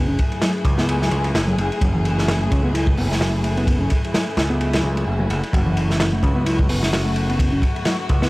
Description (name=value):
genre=breakbeat, breaks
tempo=129 BPM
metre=4/4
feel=swing 57% on 16ths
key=F# minor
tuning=A4 = 440 Hz
part: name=dark studio string section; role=sustained chords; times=0.0-8.3 s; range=F#3 to G#4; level=-27 LUFS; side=left 1 dB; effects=sidechain pumping
part: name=picked electric bass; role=riff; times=0.0-8.3 s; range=E3 to E4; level=-24 LUFS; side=equal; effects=low-pass filter, tape echo
part: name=overdriven picked electric bass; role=bass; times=0.0-8.3 s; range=F#1 to C#2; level=-22 LUFS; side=equal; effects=none
part: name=crunchy breakbeat drum kit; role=drums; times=0.2-8.3 s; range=hi-hat, kick drum, ride cymbal, snare drum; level=-21 LUFS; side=equal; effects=none
room=little or no reverb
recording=vinyl crackle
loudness=-17 LUFS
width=side -21 dB against mid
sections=0.0-8.3 A section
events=filter sweep on picked electric bass 0.0-8.3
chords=0.0 F#m9